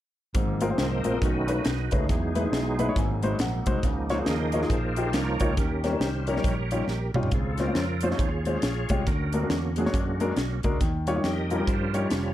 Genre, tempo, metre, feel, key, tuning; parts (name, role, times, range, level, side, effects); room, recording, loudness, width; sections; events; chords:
uptempo gospel; 138 BPM; 4/4; swing 61% on 8ths; Ab major; A4 = 441 Hz
warm upright piano; accompaniment; 0.3-12.1 s; Ab2 to B5; -28 LUFS; left 2 dB; dub echo
bright tonewheel organ; sustained chords; 0.3-12.3 s; D#3 to Eb5; -31 LUFS; right 2 dB; slow rotary speaker, chorus vibrato
fingered electric bass; bass; 0.3-12.3 s; F1 to G2; -30 LUFS; equal
crisp fusion drum kit; drums; 0.3-12.2 s; hi-hat, kick drum, snare drum, toms; -29 LUFS; equal; dub echo
light reverb, studio reverb; echo-heavy mix; -24 LUFS; side -13 dB against mid
0.3-12.3 A section
tonewheel organ solo 0.3-12.3; upright piano fill 2.5-3.8; drum fill 6.9-7.3
0.3 Ab69; 1.2 B9; 2.1 Emaj7; 3.0 Ab7; 3.8 Db69; 5.6 Eb7; 7.3 Dbmaj7; 9.1 Bb7alt/D; 10.8 Eb9